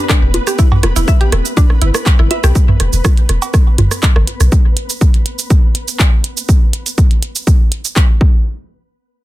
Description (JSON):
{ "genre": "minimal techno", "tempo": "122 BPM", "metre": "4/4", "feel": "straight", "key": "E minor", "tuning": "A4 = 440 Hz", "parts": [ { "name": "flickering grainy texture", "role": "texture", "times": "0.0-6.5 s", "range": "B3 to B4", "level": "-26 LUFS", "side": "left 1 dB", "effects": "built-in reverb, sidechain pumping" }, { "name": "mallet-like synth pluck", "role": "riff", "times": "0.1-2.5 s", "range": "D4 to E5", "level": "-21 LUFS", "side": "right 1 dB", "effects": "chorus, sidechain pumping, ping-pong delay" }, { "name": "electronic kick drum", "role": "drums", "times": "0.1-8.3 s", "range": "none", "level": "-10 LUFS", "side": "equal", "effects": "overdrive" }, { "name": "minimal click drum kit", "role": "drums", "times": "0.1-8.1 s", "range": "cabasa, handclaps, hi-hat", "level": "-19 LUFS", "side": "right 2 dB", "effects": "none" }, { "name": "booming analog drum machine", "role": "percussion", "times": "0.1-4.5 s", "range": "bongos, cowbell, rim click, toms", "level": "-17 LUFS", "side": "right 2 dB", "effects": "soft clipping on snare, tape echo" }, { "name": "punchy sub bass", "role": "bass", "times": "0.2-4.5 s", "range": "E1 to B1", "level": "-13 LUFS", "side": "equal", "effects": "sidechain pumping" } ], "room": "little or no reverb", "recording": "dense, heavily limited modern master", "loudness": "-10 LUFS", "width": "side -17 dB against mid", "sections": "0.0-8.5 A section", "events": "drop 0.0-8.5", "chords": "0.0 E5; 8.2 N.C." }